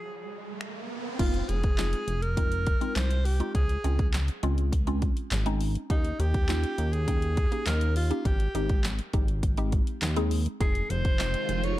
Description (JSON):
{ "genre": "dance-pop", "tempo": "102 BPM", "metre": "4/4", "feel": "straight", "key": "Ab major", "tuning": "A4 = 440 Hz", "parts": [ { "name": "breathy alto saxophone", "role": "melody", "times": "0.0-11.8 s", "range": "Eb4 to Db5", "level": "-34 LUFS", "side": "equal", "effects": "dub echo" }, { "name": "mallet-like synth pluck", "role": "accompaniment", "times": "0.0-11.6 s", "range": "Ab3 to G5", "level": "-34 LUFS", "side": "equal", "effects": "chorus, phaser, sidechain pumping" }, { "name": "riser", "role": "sound effects", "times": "0.0-1.2 s", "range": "none", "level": "-37 LUFS", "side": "right 4 dB", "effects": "none" }, { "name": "house drum kit", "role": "drums", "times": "0.6-11.8 s", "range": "crash cymbal, finger snaps, handclaps, hi-hat, kick drum, snare drum", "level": "-28 LUFS", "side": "equal", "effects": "none" }, { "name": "chorused synth bass", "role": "bass", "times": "1.2-11.8 s", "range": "F1 to Eb2", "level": "-27 LUFS", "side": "equal", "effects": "sidechain pumping" }, { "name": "phased string machine", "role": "sustained chords", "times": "10.6-11.8 s", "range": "C3 to F4", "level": "-34 LUFS", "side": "right 2 dB", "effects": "ensemble chorus, phaser, sidechain pumping" } ], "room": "digital ambience", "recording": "dark, warm production", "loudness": "-25 LUFS", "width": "side -15 dB against mid", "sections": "0.0-1.2 A section; 1.2-11.8 B section", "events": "riser 0.0-1.2", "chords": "0.0 Abmaj7; 1.2 Fm7; 3.5 Dbmaj7; 5.9 Eb7; 8.3 Abmaj7; 10.6 Fm7", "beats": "0.02 0.61 | 1.19 1.78 2.37 2.96 | 3.55 4.13 4.72 5.31 | 5.90 6.49 7.08 7.67 | 8.25 8.84 9.43 10.02 | 10.61 11.19 11.78" }